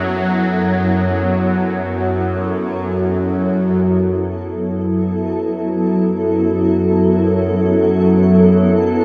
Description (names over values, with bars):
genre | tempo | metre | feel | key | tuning
dark ambient drone | free time | none | none | F# minor | A4 = 440 Hz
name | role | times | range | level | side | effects
granular cloud pad | sustained chords | 0.0-9.0 s | F#3 to A4 | -20 LUFS | equal | built-in reverb
bowed-like drone | drone | 0.0-9.0 s | F#2 to F#3 | -18 LUFS | equal | built-in reverb, phaser
room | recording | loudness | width
wet cathedral reverb, RT60 4.8 s | none | -16 LUFS | mono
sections
0.0-3.8 A section; 3.8-9.0 B section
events
fade-out on ambient pad 0.0-3.8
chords
0.0 F#m